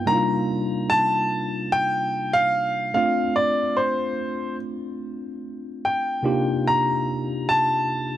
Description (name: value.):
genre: soul.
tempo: 73 BPM.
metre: 4/4.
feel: swing 54% on 16ths.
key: C dorian.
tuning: A4 = 441 Hz.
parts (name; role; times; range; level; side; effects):
clear baby grand piano; melody; 0.0-8.2 s; C5 to Bb5; -22 LUFS; equal; none.
mellow tine electric piano; accompaniment; 0.0-8.2 s; C3 to G4; -26 LUFS; equal; overdrive, slow stereo tremolo.
room: light reverb.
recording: none.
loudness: -20 LUFS.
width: side -12 dB against mid.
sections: 0.1-8.2 A section.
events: none.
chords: 0.1 Cm11; 3.0 Dm7; 6.2 Cm11.